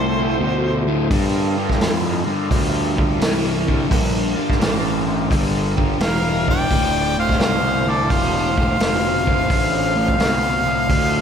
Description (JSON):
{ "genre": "blues rock power trio and southern rock", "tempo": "86 BPM", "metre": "4/4", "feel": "swing 68% on 8ths", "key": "D minor", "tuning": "A4 = 440 Hz", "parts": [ { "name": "bright harmonica", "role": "melody", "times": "0.0-0.8, 6.0-11.2 s", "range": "C5 to G5", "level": "-21 LUFS", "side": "left 1 dB", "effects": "overdrive, slapback echo" }, { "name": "nasal lead guitar with a parked wah", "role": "second line", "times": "0.0-0.9, 6.0-11.2 s", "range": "A4 to D5", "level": "-29 LUFS", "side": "right 6 dB", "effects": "overdrive, slapback echo, analog delay" }, { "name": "overdriven tonewheel organ", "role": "sustained chords", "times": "0.0-11.2 s", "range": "D4 to A5", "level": "-32 LUFS", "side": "right 2 dB", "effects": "slow rotary speaker, chorus vibrato" }, { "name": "crunchy overdriven guitar", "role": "riff", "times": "0.0-11.2 s", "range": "D2 to E3", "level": "-21 LUFS", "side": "left 1 dB", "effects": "phaser, slapback echo" }, { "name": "fuzz fingered electric bass", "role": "bass", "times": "0.0-11.2 s", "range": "D1 to G2", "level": "-23 LUFS", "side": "equal", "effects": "overdrive" }, { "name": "vintage drum kit", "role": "drums", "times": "1.1-11.1 s", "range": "hi-hat, kick drum, snare drum", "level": "-22 LUFS", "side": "equal", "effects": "none" } ], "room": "moderate lush hall reverb, RT60 2.2 s", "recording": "big arena sound", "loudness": "-16 LUFS", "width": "side -7 dB against mid", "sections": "0.0-11.2 A section", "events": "none", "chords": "0.0 Dm7; 1.1 Gm7; 6.7 Dm7" }